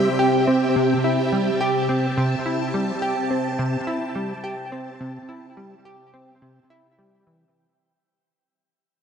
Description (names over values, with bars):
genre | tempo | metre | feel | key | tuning
ambient, sequencer-driven space music | 106 BPM | 4/4 | straight | unclear | A4 = 441 Hz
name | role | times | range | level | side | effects
phased string machine | sustained chords | 0.0-7.6 s | C3 to A5 | -24 LUFS | right 1 dB | ensemble chorus, phaser, shimmer reverb
plucky analog bass | riff | 0.0-7.4 s | C3 to G4 | -23 LUFS | equal | wide subtle chorus, tape echo, shimmer reverb
bubbling stepped-filter texture | texture | 0.0-7.6 s | G5 | -37 LUFS | right 1 dB | chorus, built-in reverb, shimmer reverb
room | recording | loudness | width
wet spring reverb, RT60 2.1 s | echo-heavy mix, cassette tape | -20 LUFS | side -7 dB against mid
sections
0.0-7.6 A section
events
fade-out 0.0-7.6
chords
0.0 C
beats
0.19 | 0.76 1.32 1.89 2.46 | 3.02 3.59 4.16 4.72 | 5.29 5.85 6.42 6.99